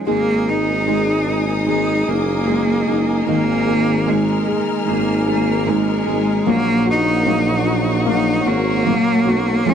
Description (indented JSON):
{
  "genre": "pop",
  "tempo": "75 BPM",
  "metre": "4/4",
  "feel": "straight",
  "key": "unclear",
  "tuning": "A4 = 440 Hz",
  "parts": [
    { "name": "bright cello", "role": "melody", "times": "0.0-9.7 s", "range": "G#3 to D#4", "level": "-20 LUFS", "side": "right 1 dB", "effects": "none" },
    { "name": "felt-muted upright piano", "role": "accompaniment", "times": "0.0-9.7 s", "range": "D#3 to F#4", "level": "-22 LUFS", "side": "left 7 dB", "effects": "none" },
    { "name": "fingerpicked steel-string acoustic guitar", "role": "arpeggios", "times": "0.0-9.7 s", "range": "A#2 to G#4", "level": "-24 LUFS", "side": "right 14 dB", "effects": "none" },
    { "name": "warm studio string section", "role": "sustained chords", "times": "0.1-9.7 s", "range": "G#4 to E#6", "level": "-27 LUFS", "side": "left 3 dB", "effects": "none" },
    { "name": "mellow tuba", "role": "bass", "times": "0.1-9.7 s", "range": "F#1 to C#2", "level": "-22 LUFS", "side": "equal", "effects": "none" }
  ],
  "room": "moderate booth ambience, RT60 0.2 s",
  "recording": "dry, close 1970s-style studio recording",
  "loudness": "-15 LUFS",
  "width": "side -8 dB against mid",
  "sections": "0.1-9.7 A section",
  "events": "none",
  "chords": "0.1 G#sus2; 6.5 F#/A#"
}